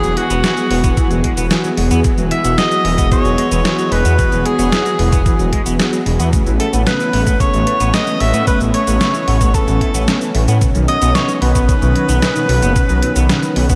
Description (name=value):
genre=synthwave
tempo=112 BPM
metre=4/4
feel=straight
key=E major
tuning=A4 = 441 Hz
part: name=clear tenor saxophone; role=melody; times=0.0-13.8 s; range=F#4 to E5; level=-22 LUFS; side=equal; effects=delay, shimmer reverb
part: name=FM electric piano with soft pad layer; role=second line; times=0.0-13.8 s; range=F#5 to E6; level=-32 LUFS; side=equal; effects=none
part: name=warm analog pad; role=sustained chords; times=0.0-13.8 s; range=D#3 to G#4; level=-22 LUFS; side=equal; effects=chorus, sidechain pumping, shimmer reverb
part: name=semi-hollow electric guitar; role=arpeggios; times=0.0-13.8 s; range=C#3 to B3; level=-27 LUFS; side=equal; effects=analog chorus, delay, shimmer reverb
part: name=mellow electric guitar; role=riff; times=0.0-13.8 s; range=B2 to A4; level=-30 LUFS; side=equal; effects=none
part: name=detuned saw bass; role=bass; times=0.0-13.8 s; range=E1 to A2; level=-19 LUFS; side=equal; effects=chorus, sidechain pumping
part: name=detuned 8-bit digital drum machine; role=drums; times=0.0-13.8 s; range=cabasa, hi-hat, snare drum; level=-24 LUFS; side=equal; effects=none
part: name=electronic kick drum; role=drums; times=0.8-13.8 s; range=none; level=-18 LUFS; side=equal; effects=none
room=wet cathedral reverb, RT60 5.8 s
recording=dreamy mix soaked in reverb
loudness=-15 LUFS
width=mono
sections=0.0-13.8 A section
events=none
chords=0.0 Eadd9; 6.3 Aadd9; 10.6 Badd9